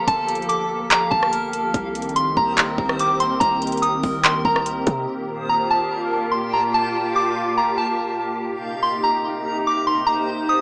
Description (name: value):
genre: hip hop, atmospheric cloud-rap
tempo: 144 BPM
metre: 4/4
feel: half-time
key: G minor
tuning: A4 = 440 Hz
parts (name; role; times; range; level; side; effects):
- soft synth bell; melody; 0.0-10.6 s; A5 to Eb6; -23 LUFS; equal; chorus, plate reverb, digital delay
- glassy FM pad; sustained chords; 0.0-10.6 s; Bb2 to A4; -28 LUFS; equal; ensemble chorus, built-in reverb, sidechain pumping
- warm 808-style bass; bass; 0.0-5.1 s; G1 to C3; -32 LUFS; equal; none
- backwards swelling texture; texture; 0.0-10.6 s; Bb3 to Bb5; -32 LUFS; equal; built-in reverb
- smooth R&B drum kit; drums; 0.1-5.0 s; handclaps, hi-hat, kick drum, rim click; -23 LUFS; equal; none
room: wet small room ambience, RT60 0.5 s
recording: small speaker sound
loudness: -21 LUFS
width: mono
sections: 0.0-5.1 A section; 5.1-10.6 B section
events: none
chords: 0.0 Gm9; 1.7 Cm7; 5.1 Gm9; 8.4 Cm7